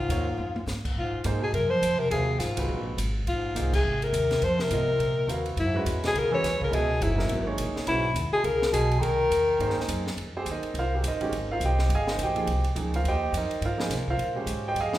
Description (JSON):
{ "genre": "modal jazz", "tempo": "209 BPM", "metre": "4/4", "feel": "swing 60% on 8ths", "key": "F minor from 10.2 s", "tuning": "A4 = 440 Hz", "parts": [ { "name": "breathy alto saxophone", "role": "melody", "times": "0.0-9.9 s", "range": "Fb4 to Db5", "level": "-26 LUFS", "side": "left 2 dB", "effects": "none" }, { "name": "breathy bass clarinet", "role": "second line", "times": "0.0-9.9 s", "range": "Ab2 to F3", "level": "-31 LUFS", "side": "right 2 dB", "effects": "none" }, { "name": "upright bass", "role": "bass", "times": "0.0-15.0 s", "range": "Gb1 to C3", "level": "-30 LUFS", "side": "equal", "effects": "none" }, { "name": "warm grand piano", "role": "accompaniment", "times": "0.1-15.0 s", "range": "Eb3 to Ab5", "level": "-31 LUFS", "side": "right 2 dB", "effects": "none" }, { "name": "compact cocktail drum kit", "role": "drums", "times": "0.1-15.0 s", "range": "crash cymbal, hi-hat, kick drum, ride cymbal, snare drum, toms", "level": "-36 LUFS", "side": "equal", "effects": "none" } ], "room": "wet recital hall reverb, RT60 1.5 s", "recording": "recorded in a church or concert hall", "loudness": "-24 LUFS", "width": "side -14 dB against mid", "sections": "1.0-10.2 A section; 10.2-15.0 B section", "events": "drum fill 0.4; band accent 3.7", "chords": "0.0 Fm11; 1.0 Bb9sus4; 5.6 Gb9sus4; 9.0 C7alt; 10.2 Fm11" }